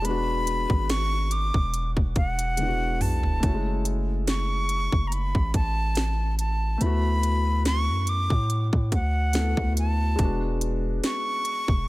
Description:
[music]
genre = contemporary R&B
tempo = 71 BPM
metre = 4/4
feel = swing 54% on 16ths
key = unclear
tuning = A4 = 440 Hz
[part]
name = breathy bright concert flute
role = melody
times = 0.0-11.9 s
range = F#5 to D6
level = -29 LUFS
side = equal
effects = ping-pong delay
[part]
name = warm grand piano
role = accompaniment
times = 0.0-11.9 s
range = G#3 to A4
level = -32 LUFS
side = left 2 dB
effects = none
[part]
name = long sustained 808-style bass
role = bass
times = 0.0-11.9 s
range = E1 to A2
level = -25 LUFS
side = equal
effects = none
[part]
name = trap drum kit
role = drums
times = 0.0-11.9 s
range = hi-hat, kick drum, snare drum, toms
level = -26 LUFS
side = equal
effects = none
[sound]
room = digital ambience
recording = none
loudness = -22 LUFS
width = side -19 dB against mid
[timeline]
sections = 0.0-11.9 A section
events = drum fill 2.6-3.4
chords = 0.0 E9; 3.4 F#m7; 6.8 D6; 10.2 E9

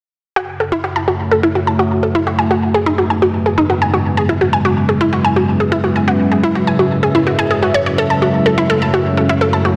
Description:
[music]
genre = melodic techno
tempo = 126 BPM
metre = 4/4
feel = straight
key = F# dorian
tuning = A4 = 441 Hz
[part]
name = deep dark ambient pad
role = sustained chords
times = 1.1-9.8 s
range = G#3 to E5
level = -21 LUFS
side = equal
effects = chorus, built-in reverb
[part]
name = analog pluck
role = arpeggios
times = 0.4-9.7 s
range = D#4 to A5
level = -17 LUFS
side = equal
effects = chorus, cassette tape, tape echo
[part]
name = analog drone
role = drone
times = 0.5-9.8 s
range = F#2 to C#3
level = -21 LUFS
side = equal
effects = chorus
[part]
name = electronic hi-hat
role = drums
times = 0.4-9.7 s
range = none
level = barely audible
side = none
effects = none
[sound]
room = moderate lush hall reverb, RT60 1.8 s, digital ambience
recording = dense, heavily limited modern master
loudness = -15 LUFS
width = mono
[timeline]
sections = 0.4-9.8 A section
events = filter sweep on synth arpeggio sound 0.4-9.8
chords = 0.4 F#m7; 2.3 G#m; 4.2 C#m7; 8.0 F#m7

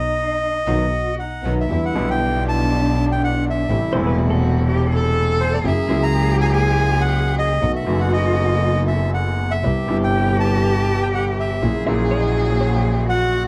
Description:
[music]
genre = tango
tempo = 121 BPM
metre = 4/4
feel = rubato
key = E minor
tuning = A4 = 438 Hz
[part]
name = bandoneon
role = melody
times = 0.0-13.4 s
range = C5 to A#5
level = -26 LUFS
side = equal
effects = none
[part]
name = warm cello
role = second line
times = 0.0-13.5 s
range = D4 to A4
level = -26 LUFS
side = equal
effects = none
[part]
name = clear concert grand piano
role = accompaniment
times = 0.7-13.5 s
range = E1 to F#4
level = -26 LUFS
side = equal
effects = none
[part]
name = warm studio string section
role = stabs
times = 0.7-13.5 s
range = G3 to B4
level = -34 LUFS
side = equal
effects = none
[part]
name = clear double bass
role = bass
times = 0.7-13.5 s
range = E1 to E2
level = -23 LUFS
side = equal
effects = none
[part]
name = hollow-body jazz guitar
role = second line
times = 3.9-5.2, 11.9-12.9 s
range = A4 to E5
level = -31 LUFS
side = equal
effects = none
[sound]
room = light reverb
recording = dark, warm production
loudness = -19 LUFS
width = mono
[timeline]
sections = 0.0-1.7 A section; 1.7-13.5 B section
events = band accent 0.0-1.7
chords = 0.0 B; 1.7 Em7; 3.7 Am7; 5.6 F#7; 7.6 B7; 9.6 Cmaj7; 11.6 F#7/A#

